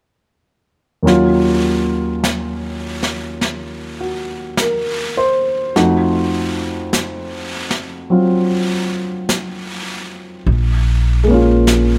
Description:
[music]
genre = jazz ballad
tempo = 51 BPM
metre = 4/4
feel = swing 67% on 8ths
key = unclear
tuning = A4 = 442 Hz
[part]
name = warm baby grand piano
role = accompaniment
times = 1.0-12.0 s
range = Eb2 to C5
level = -19 LUFS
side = equal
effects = none
[part]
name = jazz brush drum kit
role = drums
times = 1.1-12.0 s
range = brushed snare drum, hi-hat, snare drum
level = -25 LUFS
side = equal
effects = none
[part]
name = upright bass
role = bass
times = 10.5-12.0 s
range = Bb1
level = -16 LUFS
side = equal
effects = none
[sound]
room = moderate studio reverb, RT60 0.8 s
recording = none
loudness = -17 LUFS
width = mono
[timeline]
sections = 1.0-10.5 A section; 10.5-12.0 B section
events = none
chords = 1.0 Ebm9; 5.7 F7b9; 10.5 Bbm7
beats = | 1.05 2.23 3.41 4.58 | 5.75 6.92 8.10 9.28 | 10.47 11.66

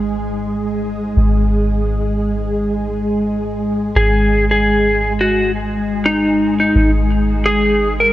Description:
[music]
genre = trip hop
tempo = 86 BPM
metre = 4/4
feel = swing 55% on 16ths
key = unclear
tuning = A4 = 439 Hz
[part]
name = string machine, cellos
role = sustained chords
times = 0.0-8.1 s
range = G#3 to G#4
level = -19 LUFS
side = equal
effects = ensemble chorus, vintage 12-bit sampler grit
[part]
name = soft 808-style bass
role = bass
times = 0.0-8.1 s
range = G#1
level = -19 LUFS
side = equal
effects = none
[part]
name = clean lap steel guitar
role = melody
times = 4.0-8.1 s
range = D#4 to A#4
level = -15 LUFS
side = equal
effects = tape echo
[sound]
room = moderate lush hall reverb, RT60 2.9 s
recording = worn, warbling old tape, cassette tape, warbly pitch drift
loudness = -14 LUFS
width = side -14 dB against mid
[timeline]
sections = 0.0-8.1 A section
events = none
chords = 0.0 N.C.; 4.0 G#5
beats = 0.46 | 1.16 1.86 2.56 3.25 | 3.95 4.65 5.35 6.04 | 6.74 7.44

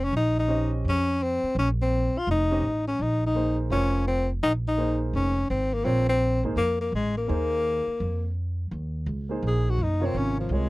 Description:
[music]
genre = modal jazz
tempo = 168 BPM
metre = 4/4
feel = swing 65% on 8ths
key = Bb dorian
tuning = A4 = 440 Hz
[part]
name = breathy tenor saxophone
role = melody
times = 0.0-10.7 s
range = F3 to Ab4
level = -25 LUFS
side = left 2 dB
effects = none
[part]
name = upright bass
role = bass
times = 0.0-10.7 s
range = F1 to F2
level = -27 LUFS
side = equal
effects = none
[part]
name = warm grand piano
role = accompaniment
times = 0.5-10.7 s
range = C3 to Eb5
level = -31 LUFS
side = right 2 dB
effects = none
[sound]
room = little or no reverb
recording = dry, close 1970s-style studio recording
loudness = -23 LUFS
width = side -20 dB against mid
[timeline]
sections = 0.0-8.7 A section; 8.7-10.7 B section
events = tenor saxophone solo 8.7-10.7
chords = 0.0 Bb9sus4; 8.7 Eb9sus4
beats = | 0.13 0.49 0.85 1.21 | 1.56 1.92 2.28 2.64 | 2.99 3.35 3.71 4.07 | 4.42 4.78 5.14 5.50 | 5.85 6.21 6.57 6.92 | 7.28 7.64 8.00 8.35 | 8.71 9.07 9.43 9.79 | 10.14 10.50

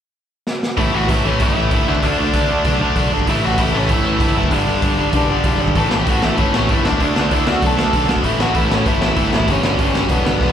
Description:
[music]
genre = punk rock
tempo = 193 BPM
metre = 4/4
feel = straight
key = A mixolydian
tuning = A4 = 439 Hz
[part]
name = raw garage drum kit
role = drums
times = 0.5-10.5 s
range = hi-hat, kick drum, snare drum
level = -20 LUFS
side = equal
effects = none
[part]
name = dark smooth lead guitar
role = melody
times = 0.8-10.5 s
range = B3 to A5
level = -22 LUFS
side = left 2 dB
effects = overdrive, slapback echo
[part]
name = cranked stack guitar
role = riff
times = 0.8-10.5 s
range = G2 to D4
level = -21 LUFS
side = right 13 dB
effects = overdrive, slapback echo
[part]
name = overdriven semi-hollow guitar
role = riff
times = 0.8-10.5 s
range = G2 to D4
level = -21 LUFS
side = left 11 dB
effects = slapback echo
[part]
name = modern bright picked electric bass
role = bass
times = 0.8-10.5 s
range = E1 to D2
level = -21 LUFS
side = equal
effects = none
[sound]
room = small room ambience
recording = live gig heard through the venue's PA, recital hall reverb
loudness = -14 LUFS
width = side -9 dB against mid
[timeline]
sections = 0.8-10.5 A section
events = drum fill 0.5-0.8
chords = 0.0 N.C.; 0.8 A; 1.9 D5; 3.3 A; 4.5 G5; 5.8 A; 6.8 D5; 8.2 A; 9.5 G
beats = 0.16 0.47 | 0.78 1.09 1.40 1.71 | 2.02 2.33 2.65 2.96 | 3.27 3.58 3.89 4.20 | 4.51 4.82 5.13 5.44 | 5.75 6.07 6.38 6.69 | 7.00 7.31 7.62 7.93 | 8.24 8.55 8.86 9.18 | 9.49 9.80 10.11 10.42

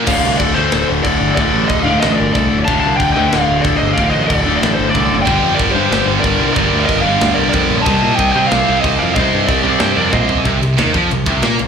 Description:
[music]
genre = heavy metal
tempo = 185 BPM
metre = 4/4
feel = straight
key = D phrygian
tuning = A4 = 440 Hz
[part]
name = crunchy overdriven guitar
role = riff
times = 0.0-11.7 s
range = D2 to C4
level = -19 LUFS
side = equal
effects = slapback echo
[part]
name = heavy high-gain guitar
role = riff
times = 0.0-11.7 s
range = D2 to C4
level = -20 LUFS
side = left 10 dB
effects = distortion, slapback echo
[part]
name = heavy high-gain guitar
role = riff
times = 0.0-0.1, 5.3-11.7 s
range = G2 to C4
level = -19 LUFS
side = right 13 dB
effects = distortion, slapback echo
[part]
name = high-gain lead guitar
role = melody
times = 0.1-10.4 s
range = C5 to A5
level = -18 LUFS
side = equal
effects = distortion, slapback echo
[part]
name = high-gain lead guitar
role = second line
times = 0.1-10.4 s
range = G4 to F5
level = -23 LUFS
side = right 4 dB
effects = distortion, slapback echo
[part]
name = modern bright picked electric bass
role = bass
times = 0.1-11.7 s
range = D1 to C3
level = -20 LUFS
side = equal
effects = none
[part]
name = tight metal drum kit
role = drums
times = 0.1-11.7 s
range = crash cymbal, kick drum, ride cymbal, snare drum, toms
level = -21 LUFS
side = right 1 dB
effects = none
[sound]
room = studio reverb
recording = live gig heard through the venue's PA, club reverb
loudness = -12 LUFS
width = side -7 dB against mid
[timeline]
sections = 0.1-10.5 A section; 10.5-11.7 B section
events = half time 0.1-10.5; drum fill 10.1-10.5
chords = 0.1 Dm; 5.3 Gm; 7.9 Cm; 10.5 C5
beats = | 0.07 0.40 0.72 1.05 | 1.37 1.70 2.02 2.35 | 2.67 3.00 3.32 3.65 | 3.97 4.29 4.62 4.94 | 5.27 5.59 5.92 6.24 | 6.57 6.89 7.21 7.54 | 7.86 8.19 8.51 8.84 | 9.16 9.48 9.81 10.13 | 10.46 10.78 11.11 11.43

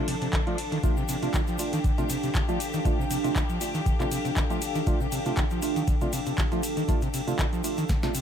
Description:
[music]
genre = acid house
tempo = 119 BPM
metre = 4/4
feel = swing 55% on 16ths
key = D minor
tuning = A4 = 442 Hz
[part]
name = clear studio string section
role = sustained chords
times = 0.0-8.2 s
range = F3 to A4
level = -36 LUFS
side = left 4 dB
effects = sidechain pumping
[part]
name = overdriven acid bass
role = riff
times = 0.0-8.2 s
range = C3 to F3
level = -32 LUFS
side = equal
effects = distortion, wide subtle chorus, sidechain pumping, digital delay
[part]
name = percussive organ stab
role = stabs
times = 0.0-8.1 s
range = A3 to F4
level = -34 LUFS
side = right 2 dB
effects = wide subtle chorus, digital delay
[part]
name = deep dark ambient pad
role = texture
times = 0.0-8.2 s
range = D4 to F5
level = -32 LUFS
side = right 2 dB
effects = chorus, built-in reverb, sidechain pumping
[part]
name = booming analog drum machine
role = drums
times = 0.1-8.2 s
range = handclaps, hi-hat, ride cymbal, snare drum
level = -34 LUFS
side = equal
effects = none
[part]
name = electronic kick drum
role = drums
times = 0.3-8.0 s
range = none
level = -27 LUFS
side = equal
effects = none
[part]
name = egg shaker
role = percussion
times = 0.8-8.2 s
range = none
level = -41 LUFS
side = left 4 dB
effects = none
[sound]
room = little or no reverb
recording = none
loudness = -24 LUFS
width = side -8 dB against mid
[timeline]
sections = 0.0-8.2 A section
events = drum fill 7.9-8.2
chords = 0.0 Dm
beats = 0.33 | 0.83 1.34 1.84 2.35 | 2.85 3.36 3.86 4.37 | 4.87 5.37 5.88 6.38 | 6.89 7.39 7.89

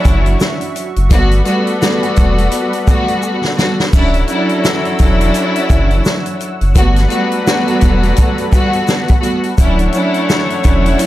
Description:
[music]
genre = hip hop, boom-bap hip-hop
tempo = 85 BPM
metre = 4/4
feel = swing 60% on 16ths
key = D major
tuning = A4 = 440 Hz
[part]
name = warm studio string section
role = accompaniment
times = 0.0-11.1 s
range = F#3 to F#4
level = -16 LUFS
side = right 1 dB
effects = cassette tape, high-pass filter, low-pass filter
[part]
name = warm analog pad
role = sustained chords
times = 0.0-11.1 s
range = F#4 to E6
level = -25 LUFS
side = left 1 dB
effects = chorus, high-pass filter, low-pass filter
[part]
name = edgy saxophone section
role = stabs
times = 0.0-11.1 s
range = F#3 to D5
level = -22 LUFS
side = left 4 dB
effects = high-pass filter, low-pass filter, ping-pong delay
[part]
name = egg shaker and woodblock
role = percussion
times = 0.0-11.1 s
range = none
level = -31 LUFS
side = left 3 dB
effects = none
[part]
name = sub bass with octave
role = bass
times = 0.1-11.0 s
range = D1 to G1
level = -14 LUFS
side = equal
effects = none
[part]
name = vintage drum kit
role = drums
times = 0.1-11.1 s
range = hi-hat, kick drum, snare drum, splash cymbal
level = -14 LUFS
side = equal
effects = none
[sound]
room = little or no reverb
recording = none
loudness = -11 LUFS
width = side -15 dB against mid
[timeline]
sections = 0.0-11.1 A section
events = drum fill 3.2-3.9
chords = 0.0 Dmaj9; 1.1 Gmaj9; 3.9 Dmaj9; 6.8 Gmaj9; 9.6 Dmaj9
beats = 0.40 | 1.11 1.82 2.52 3.23 | 3.93 4.64 5.34 6.05 | 6.76 7.46 8.17 8.88 | 9.58 10.29 10.99

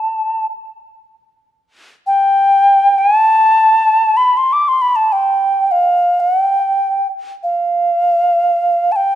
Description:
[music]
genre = caucasian folk, Caucasian lament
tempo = free time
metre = none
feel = none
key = unclear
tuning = A4 = 440 Hz
[part]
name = bright reedy alto ocarina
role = solo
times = 0.0-9.2 s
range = F5 to D6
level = -11 LUFS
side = equal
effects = none
[sound]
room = moderate scoring stage reverb, RT60 1.6 s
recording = dark, warm production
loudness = -11 LUFS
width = side -11 dB against mid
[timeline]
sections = 0.0-9.2 A section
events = none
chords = none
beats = free time

